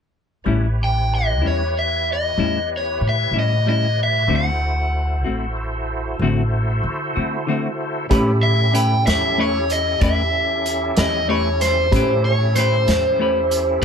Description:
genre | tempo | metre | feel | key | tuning
slow blues | 63 BPM (dotted quarters) | 12/8 | straight | A mixolydian | A4 = 441 Hz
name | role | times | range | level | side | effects
bright tonewheel organ | sustained chords | 0.4-13.8 s | C#4 to C#5 | -28 LUFS | right 1 dB | slow rotary speaker, chorus vibrato
clean electric guitar | accompaniment | 0.5-13.8 s | A2 to B4 | -22 LUFS | left 4 dB | tremolo
upright bass | bass | 0.5-13.8 s | A1 to D3 | -22 LUFS | equal | none
overdriven semi-hollow guitar | melody | 0.8-13.8 s | C5 to G5 | -20 LUFS | equal | none
dark upright piano | accompaniment | 8.1-13.8 s | C#4 to B5 | -28 LUFS | right 2 dB | none
vintage drum kit | drums | 8.1-13.8 s | hi-hat, kick drum, snare drum | -23 LUFS | equal | none
room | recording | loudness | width
light reverb | none | -17 LUFS | side -7 dB against mid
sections
0.5-8.1 A section; 8.1-13.8 B section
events
none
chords
0.5 A7; 4.3 D7; 8.1 A9

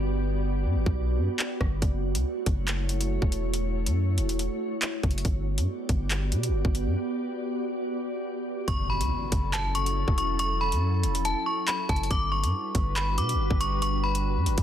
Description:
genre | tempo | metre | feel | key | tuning
hip hop, drill | 140 BPM | 4/4 | half-time | F# phrygian | A4 = 438 Hz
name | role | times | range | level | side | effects
glassy FM pad | sustained chords | 0.0-14.6 s | F#3 to D5 | -32 LUFS | right 1 dB | ensemble chorus, built-in reverb
long sustained 808-style bass | bass | 0.0-14.6 s | E1 to B2 | -27 LUFS | equal | none
drill drum kit | drums | 0.9-14.6 s | handclaps, hi-hat, kick drum, rim click | -28 LUFS | equal | none
metallic FM bell | melody | 8.7-14.6 s | A5 to D6 | -28 LUFS | left 1 dB | chorus, digital delay
impact | sound effects | 8.7-10.4 s | none | -38 LUFS | equal | none
room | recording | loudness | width
little or no reverb | dense, heavily limited modern master | -25 LUFS | side -10 dB against mid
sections
0.0-8.7 A section; 8.7-14.6 B section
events
break 0.0-1.8, 7.0-8.7; impact 8.7-10.4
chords
0.0 Gmaj7; 1.8 F#m7; 5.2 Gmaj7; 8.7 F#m7; 12.1 Gmaj7

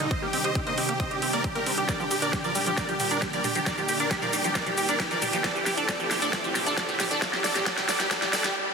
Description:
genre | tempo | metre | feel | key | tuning
uplifting trance | 135 BPM | 4/4 | straight | G minor | A4 = 439 Hz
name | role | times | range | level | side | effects
big supersaw lead | melody | 0.0-8.5 s | G4 to Eb5 | -29 LUFS | equal | sidechain pumping, dub echo
analog pluck | second line | 0.0-8.5 s | G4 to Eb5 | -32 LUFS | left 1 dB | chorus, sidechain pumping, digital delay
analog string pad | sustained chords | 0.0-8.5 s | Bb2 to E4 | -35 LUFS | right 1 dB | ensemble chorus, sidechain pumping
liquid acid bass | arpeggios | 0.0-8.5 s | D3 to G4 | -32 LUFS | right 4 dB | lush chorus, sidechain pumping, digital delay
big-room dance drum kit | drums | 0.0-8.5 s | hi-hat, shaker, snare drum, toms | -29 LUFS | equal | overdrive, sidechain pumping on hats, sidechain pumping on perc, sidechain pumping on toms
riser | sound effects | 0.2-8.6 s | none | -35 LUFS | right 1 dB | none
electronic kick drum | drums | 0.1-8.2 s | none | -32 LUFS | equal | overdrive
room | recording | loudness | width
moderate huge ambient reverb, RT60 7.8 s | dense, heavily limited modern master, high-pass filter | -23 LUFS | side -5 dB against mid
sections
0.0-8.7 A section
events
build-up 0.0-8.7; filter sweep on acid bass 0.0-8.7; riser 0.2-8.6; drum fill 1.9-8.6; stop 8.6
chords
0.1 Cmadd9; 1.9 Gm; 5.4 Am

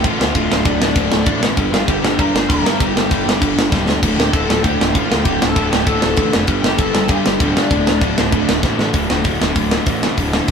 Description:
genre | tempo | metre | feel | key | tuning
punk rock | 196 BPM | 4/4 | straight | D minor | A4 = 436 Hz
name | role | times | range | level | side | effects
bluesy overdriven lead guitar | melody | 0.0-8.6 s | D4 to C6 | -22 LUFS | left 1 dB | distortion
distorted electric guitar | riff | 0.0-10.5 s | D2 to G3 | -18 LUFS | equal | distortion
fuzz picked electric bass | bass | 0.0-10.5 s | D1 to G2 | -22 LUFS | equal | overdrive
tight metal drum kit | drums | 0.0-10.5 s | crash cymbal, hi-hat, kick drum, snare drum | -17 LUFS | equal | none
room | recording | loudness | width
light reverb | band playing live in one room | -13 LUFS | side -6 dB against mid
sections
0.0-8.9 A section; 8.9-10.5 B section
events
drum fill 3.7-4.0, 8.6-8.9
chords
0.0 Dm; 1.6 Gm; 4.0 Dm; 6.5 G5; 7.7 D5

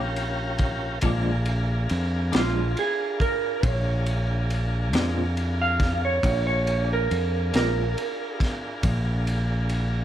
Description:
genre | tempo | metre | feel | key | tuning
slow blues | 46 BPM (dotted quarters) | 12/8 | straight | Bb mixolydian | A4 = 438 Hz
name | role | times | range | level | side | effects
tonewheel organ | sustained chords | 0.0-10.0 s | Db4 to Bb4 | -33 LUFS | equal | slow rotary speaker
fingered electric bass | bass | 0.0-10.0 s | Bb1 to F2 | -25 LUFS | equal | none
crunchy breakbeat drum kit | drums | 0.2-9.9 s | kick drum, ride cymbal, snare drum | -29 LUFS | equal | none
clean electric guitar | accompaniment | 1.0-7.8 s | Bb2 to D4 | -28 LUFS | left 1 dB | tremolo
clean lap steel guitar | melody | 2.4-8.4 s | F4 to F5 | -26 LUFS | right 4 dB | plate reverb, digital delay
room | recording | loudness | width
light reverb | none | -22 LUFS | side -11 dB against mid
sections
0.0-10.0 A section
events
electric slide guitar solo 0.0-10.0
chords
0.0 Eb7 (rootless); 1.0 Bb7

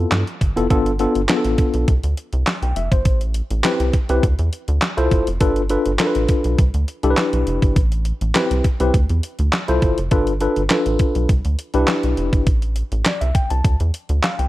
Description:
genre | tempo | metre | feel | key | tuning
early-eighties boogie funk | 102 BPM | 4/4 | straight | unclear | A4 = 440 Hz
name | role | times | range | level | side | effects
tine electric piano | accompaniment | 0.0-14.5 s | B3 to A5 | -20 LUFS | left 2 dB | overdrive, fast stereo tremolo
rubbery square bass | bass | 0.0-14.5 s | F1 to G2 | -20 LUFS | equal | none
detuned 8-bit digital drum machine | drums | 0.1-14.5 s | handclaps, hi-hat, kick drum, snare drum | -19 LUFS | equal | none
room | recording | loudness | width
digital ambience | none | -16 LUFS | side -16 dB against mid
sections
0.7-14.5 A section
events
none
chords
0.0 G13; 0.7 G7; 1.9 C5; 3.1 Am7; 4.2 Dm7; 5.4 G7; 6.6 Cmaj7; 7.8 Am7; 8.9 Dm7; 10.1 G7; 11.3 Cmaj7; 12.5 Am; 13.6 Dm7

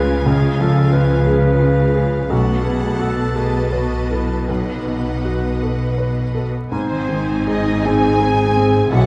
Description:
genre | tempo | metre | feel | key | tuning
cinematic, emotional film score for orchestra | 52-60 BPM (dotted quarters) | 6/8 | rubato | unclear | A4 = 440 Hz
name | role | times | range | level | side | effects
dark clarinet | second line | 0.0-6.3 s | D#4 to B4 | -26 LUFS | equal | none
rich studio violin section | second line | 0.0-9.1 s | D#5 to A5 | -33 LUFS | equal | none
felt-muted upright piano | accompaniment | 0.0-9.1 s | B1 to B4 | -25 LUFS | equal | none
rich studio viola section | accompaniment | 0.0-9.1 s | E#3 to B4 | -27 LUFS | equal | none
concert harp | arpeggios | 0.0-9.1 s | G#2 to G#5 | -26 LUFS | equal | none
clear studio cello section | bass | 0.0-9.1 s | G#2 to C#3 | -27 LUFS | equal | none
clear studio double bass section | bass | 0.0-9.1 s | G#1 to C#2 | -24 LUFS | equal | none
rich studio violin section | melody | 6.7-9.1 s | B#4 to G#5 | -28 LUFS | equal | none
bright silver concert flute | second line | 6.7-9.1 s | B#4 to G#5 | -26 LUFS | equal | none
warm French horn section | sustained chords | 6.7-9.1 s | B#3 to G#4 | -23 LUFS | equal | none
room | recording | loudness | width
moderate scoring stage reverb, RT60 1.5 s | dark, warm production, vinyl crackle | -18 LUFS | mono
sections
0.0-6.7 A section; 6.7-9.1 B section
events
none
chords
0.0 C#7; 2.3 B7; 6.7 G#

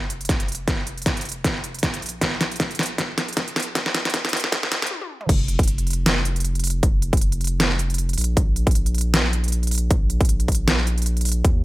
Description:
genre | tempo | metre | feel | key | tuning
future bass | 156 BPM | 4/4 | swing 56% on 16ths, half-time | unclear | A4 = 442 Hz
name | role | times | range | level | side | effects
saturated sub bass | bass | 0.0-11.6 s | F1 to Eb2 | -24 LUFS | equal | sidechain pumping
dubstep drum kit | drums | 0.1-11.5 s | crash cymbal, hi-hat, snare drum, toms | -23 LUFS | equal | none
electronic kick drum | drums | 0.3-11.5 s | none | -20 LUFS | equal | none
room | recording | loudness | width
little or no reverb | high-pass filter | -19 LUFS | side -18 dB against mid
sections
0.0-5.3 A section; 5.3-11.6 B section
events
build-up 0.0-5.3; drum fill 0.0-4.9, 4.9-5.3; filter sweep 0.0-5.3; stop 4.9-5.3; drop 5.3-11.6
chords
none

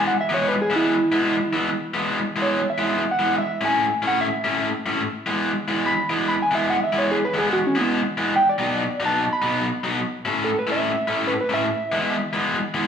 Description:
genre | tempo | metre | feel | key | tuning
blues | 144 BPM | 4/4 | swing 64% on 8ths | E major | A4 = 439 Hz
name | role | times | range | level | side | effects
electric slide guitar | melody | 0.0-12.3 s | B3 to B5 | -22 LUFS | right 1 dB | none
cranked stack guitar | riff | 0.0-12.9 s | A2 to E4 | -22 LUFS | left 1 dB | overdrive
room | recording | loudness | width
wet large studio reverb, RT60 1.2 s | band playing live in one room | -19 LUFS | side -7 dB against mid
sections
0.0-1.7 A section; 1.7-12.9 A section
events
electric slide guitar solo 0.0-12.9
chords
0.0 E; 3.3 A; 5.0 E; 8.3 B; 10.0 A; 11.7 E

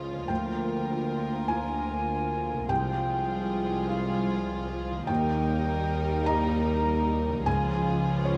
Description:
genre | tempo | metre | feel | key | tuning
cinematic, emotional film score for orchestra | 50 BPM (dotted quarters) | 6/8 | rubato | unclear | A4 = 440 Hz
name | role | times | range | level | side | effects
warm symphonic violin section | melody | 0.0-8.4 s | Ab4 to Bb4 | -40 LUFS | equal | none
rich chamber violin section | second line | 0.0-8.4 s | Eb4 to F4 | -42 LUFS | equal | none
dark symphonic viola section | accompaniment | 0.0-8.4 s | F3 to G3 | -42 LUFS | equal | none
felt-muted upright piano | accompaniment | 0.0-8.4 s | C2 to Bb5 | -35 LUFS | equal | none
mellow French horn section | sustained chords | 0.0-8.4 s | Ab3 to F4 | -38 LUFS | equal | none
concert harp | arpeggios | 0.0-8.4 s | C3 to F5 | -40 LUFS | equal | none
rich symphonic cello section | bass | 0.0-8.4 s | C2 to Eb2 | -36 LUFS | equal | none
rich symphonic double bass section | bass | 0.0-8.4 s | C2 to Eb2 | -35 LUFS | equal | none
mellow concert flute | second line | 0.3-8.4 s | Db5 to Bb5 | -36 LUFS | equal | none
room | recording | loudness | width
wet scoring stage reverb, RT60 1.8 s | none | -28 LUFS | mono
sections
0.0-8.4 A section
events
none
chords
0.3 Bb/D; 2.7 Fm/C; 5.1 Eb; 7.5 Db

